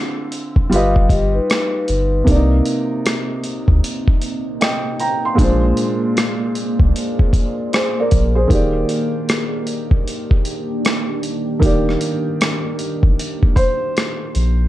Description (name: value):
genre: lo-fi hip hop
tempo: 77 BPM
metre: 4/4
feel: swing 63% on 16ths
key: Eb major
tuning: A4 = 440 Hz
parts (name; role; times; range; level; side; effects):
- felt-muted upright piano; accompaniment; 0.0-14.7 s; Bb2 to C6; -20 LUFS; right 1 dB; cassette tape
- boom bap sampler-style drum kit; drums; 0.3-14.6 s; hi-hat, kick drum, rim click; -17 LUFS; equal; none
- warm sub bass; bass; 0.6-14.7 s; Eb1 to D2; -17 LUFS; equal; none
- vibraphone with soft mallets; second line; 0.7-2.2 s; D#4 to F5; -22 LUFS; left 3 dB; tape echo
- deep dark ambient pad; sustained chords; 3.5-14.7 s; C3 to D5; -25 LUFS; right 1 dB; chorus, built-in reverb
room: light reverb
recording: cassette tape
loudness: -15 LUFS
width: side -14 dB against mid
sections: 0.0-14.7 A section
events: none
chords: 0.0 Dm9; 0.7 Gaug7; 2.3 Cm9; 5.4 Bb9; 8.5 Ebmaj7